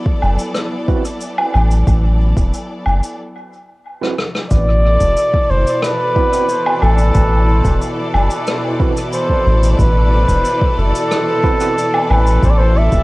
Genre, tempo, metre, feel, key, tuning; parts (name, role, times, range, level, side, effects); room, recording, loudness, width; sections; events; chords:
ambient dub; 91 BPM; 4/4; straight; A dorian; A4 = 441 Hz
clear studio string section; sustained chords; 0.0-13.0 s; B2 to D5; -22 LUFS; equal; cassette tape
electronic kick drum; drums; 0.1-13.0 s; -17 LUFS; equal; overdrive, cassette tape
soft dub sub bass; bass; 0.2-13.0 s; E1 to A1; -13 LUFS; equal
woodblock, cabasa and rim click; drums; 0.2-13.0 s; -22 LUFS; equal; cassette tape, dub echo
overdriven tine electric piano; stabs; 0.9-11.7 s; C4 to B4; -26 LUFS; right 6 dB; fast tremolo, vintage 12-bit sampler grit, cassette tape, dub echo
trumpet with bucket mute; melody; 4.5-13.0 s; A4 to E5; -17 LUFS; equal; cassette tape, dub echo
small room ambience; home recording on cassette; -12 LUFS; side -21 dB against mid
0.0-4.5 A section; 4.5-13.0 B section
break 3.2-4.5; drum fill 4.0-4.5
0.0 Asus2